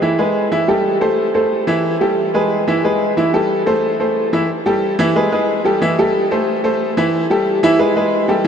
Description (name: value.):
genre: latin.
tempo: 181 BPM.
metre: 4/4.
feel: straight.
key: A minor.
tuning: A4 = 440 Hz.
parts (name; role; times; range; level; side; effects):
clear baby grand piano; solo; 0.0-8.5 s; E3 to E5; -14 LUFS; equal; none.
room: wet huge ambient reverb, RT60 8.2 s.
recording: in a vast, echoing space, nothing above 10.6 kHz.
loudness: -14 LUFS.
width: side -7 dB against mid.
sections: 0.0-4.5 A section; 4.5-8.5 B section.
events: none.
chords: 0.0 E; 0.5 Am7; 1.2 Am; 1.8 A5; 2.5 E; 3.2 Am7; 3.8 Am; 4.5 A5; 5.2 G#mmaj7; 5.8 Am7; 6.5 Am; 7.1 A5; 7.8 G#mmaj7.